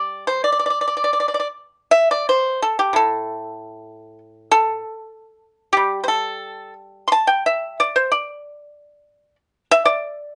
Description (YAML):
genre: chinese traditional, Chinese solo plucked strings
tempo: 88-99 BPM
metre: 2/4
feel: rubato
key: D shang mode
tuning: A4 = 440 Hz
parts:
  - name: pipa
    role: solo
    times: 0.0-10.3 s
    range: A2 to C6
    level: -20 LUFS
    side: equal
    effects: none
room: light reverb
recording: nothing above 10.6 kHz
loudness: -19 LUFS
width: mono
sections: 0.0-1.9 A section; 1.9-10.3 B section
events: none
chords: none